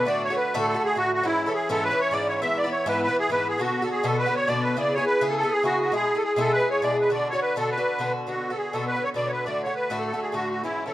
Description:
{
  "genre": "celtic folk",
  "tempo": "205 BPM",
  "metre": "4/4",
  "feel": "swing 56% on 8ths",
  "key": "B dorian",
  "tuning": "A4 = 440 Hz",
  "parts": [
    { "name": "musette accordion", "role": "melody", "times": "0.0-10.9 s", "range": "E4 to E5", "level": "-24 LUFS", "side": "equal", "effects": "none" },
    { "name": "Irish bouzouki", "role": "accompaniment", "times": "0.0-10.9 s", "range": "G#2 to G#4", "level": "-26 LUFS", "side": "equal", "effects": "none" }
  ],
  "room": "light reverb",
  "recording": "close, detailed microphones",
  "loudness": "-22 LUFS",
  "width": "side -14 dB against mid",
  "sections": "0.0-8.3 A section; 8.3-10.9 A section",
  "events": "none",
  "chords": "0.1 D; 1.2 C#m; 2.4 E; 3.6 Bm; 4.8 C#m7; 5.9 E; 7.1 Bm; 9.4 D"
}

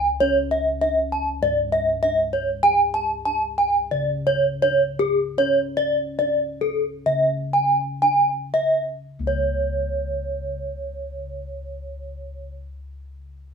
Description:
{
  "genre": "Balinese gamelan",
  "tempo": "54-99 BPM",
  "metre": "4/4",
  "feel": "straight",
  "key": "C# pelog",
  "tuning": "A4 = 440 Hz",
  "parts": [
    { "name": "gamelan-type bronze metallophone", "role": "arpeggios", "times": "0.0-12.5 s", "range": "G#4-45c to A5-40c", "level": "-20 LUFS", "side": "right 1 dB", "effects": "none" },
    { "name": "gamelan-type bossed gongs", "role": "bass", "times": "0.0-12.4 s", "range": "C#2 to G#4-45c", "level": "-31 LUFS", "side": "left 2 dB", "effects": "none" }
  ],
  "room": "moderate studio reverb, RT60 0.7 s",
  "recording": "band playing live in one room",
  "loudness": "-19 LUFS",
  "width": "side -6 dB against mid",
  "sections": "0.0-9.1 A section; 9.1-13.5 B section",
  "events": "slowing down 2.6-9.1",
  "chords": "none"
}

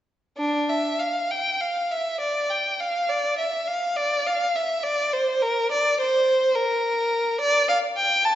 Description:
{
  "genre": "classical, baroque-style suite movement for unaccompanied violin",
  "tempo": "69 BPM (dotted quarters)",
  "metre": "12/8",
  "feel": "rubato",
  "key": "D minor",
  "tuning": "A4 = 440 Hz",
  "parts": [
    { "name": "clear violin", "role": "solo", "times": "0.4-8.4 s", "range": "D4 to A5", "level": "-21 LUFS", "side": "equal", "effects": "none" }
  ],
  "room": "wet recital hall reverb, RT60 1.6 s",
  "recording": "nothing above 8.0 kHz",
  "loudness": "-21 LUFS",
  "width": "side -12 dB against mid",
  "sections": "0.4-8.4 A section",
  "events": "none",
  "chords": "none"
}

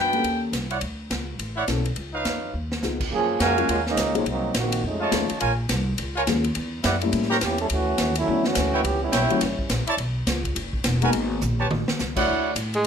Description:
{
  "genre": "jazz, big band swing",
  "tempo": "210 BPM",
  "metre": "4/4",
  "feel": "swing 61% on 8ths",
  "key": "unclear",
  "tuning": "A4 = 440 Hz",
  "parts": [
    { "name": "upright bass", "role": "bass", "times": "0.0-12.9 s", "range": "E1 to A2", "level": "-28 LUFS", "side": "equal", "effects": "none" },
    { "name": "dark baby grand piano", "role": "accompaniment", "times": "0.1-12.5 s", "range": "D3 to C#5", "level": "-26 LUFS", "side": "left 5 dB", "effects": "none" },
    { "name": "swinging big-band drum kit", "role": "drums", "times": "0.1-12.9 s", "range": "crash cymbal, hi-hat, kick drum, ride cymbal, snare drum, toms", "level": "-28 LUFS", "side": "equal", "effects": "none" },
    { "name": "clear trumpet section", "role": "stabs", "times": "0.7-12.5 s", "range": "D#4 to Bb5", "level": "-24 LUFS", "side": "right 2 dB", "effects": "none" },
    { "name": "clear trombone section", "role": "second line", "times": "3.1-5.3, 7.4-9.8 s", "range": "C#3 to A4", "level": "-25 LUFS", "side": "right 2 dB", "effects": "none" },
    { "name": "warm tenor saxophone", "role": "melody", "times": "12.8-12.9 s", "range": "G#3", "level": "-21 LUFS", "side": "right 2 dB", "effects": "none" }
  ],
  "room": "moderate club reverb, RT60 0.6 s",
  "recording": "none",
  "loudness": "-21 LUFS",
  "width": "side -7 dB against mid",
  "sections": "0.0-3.1 A section; 3.1-12.3 B section",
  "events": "drum fill 2.5, 11.4-12.0; trombone section solo 3.1-12.3",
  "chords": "0.2 Eb7#11; 0.8 Dmaj9; 2.0 C#9; 3.1 F#maj9; 4.3 Cm7b5; 4.8 F7alt; 5.4 A#m7; 6.6 Em9; 7.1 A7b9; 7.7 Dmaj9; 8.8 C#m7b5; 9.4 F#7b9; 10.0 Bsus24; 11.1 G#m9; 11.7 A; 12.3 Dmaj9"
}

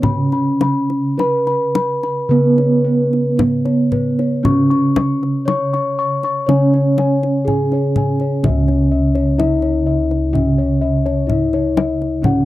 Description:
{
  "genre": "Javanese gamelan",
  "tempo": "52-63 BPM",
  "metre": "4/4",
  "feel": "straight",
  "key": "unclear",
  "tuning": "A4 = 440 Hz",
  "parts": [
    { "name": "gamelan-type bronze metallophone", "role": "melody", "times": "0.0-12.4 s", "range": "B3-25c to C#5", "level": "-18 LUFS", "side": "equal", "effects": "none" },
    { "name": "gamelan-type bronze metallophone", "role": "accompaniment", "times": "0.0-12.4 s", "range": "C#3 to C#4", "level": "-20 LUFS", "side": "right 3 dB", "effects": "none" },
    { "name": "gamelan-type bossed gongs", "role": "arpeggios", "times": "0.0-12.4 s", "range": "B4-25c to C#6", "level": "-24 LUFS", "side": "left 5 dB", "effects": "none" },
    { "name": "gamelan-type bossed gongs", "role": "bass", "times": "0.0-12.4 s", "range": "C#2 to E4-45c", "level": "-20 LUFS", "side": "equal", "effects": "none" },
    { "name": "kendang", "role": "percussion", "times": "0.0-12.4 s", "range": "none", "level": "-20 LUFS", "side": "left 3 dB", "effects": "none" }
  ],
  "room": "light reverb",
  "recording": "dry, close 1970s-style studio recording",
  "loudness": "-14 LUFS",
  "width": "side -16 dB against mid",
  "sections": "0.0-8.4 A section; 8.4-12.4 B section",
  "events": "none",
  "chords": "none"
}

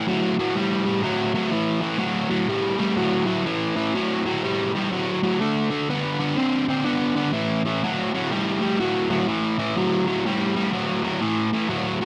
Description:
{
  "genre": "rock",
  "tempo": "124 BPM",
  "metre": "4/4",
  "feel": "swing 64% on 8ths",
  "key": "unclear",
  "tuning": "A4 = 438 Hz",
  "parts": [
    { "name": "overdriven electric guitar", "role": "solo", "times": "0.0-12.1 s", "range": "A2 to C4", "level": "-23 LUFS", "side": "equal", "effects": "none" }
  ],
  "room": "moderate club reverb, RT60 0.8 s",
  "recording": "none",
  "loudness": "-23 LUFS",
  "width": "mono",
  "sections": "0.0-12.1 A section",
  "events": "none",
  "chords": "0.0 A5; 5.4 D5; 7.4 A5"
}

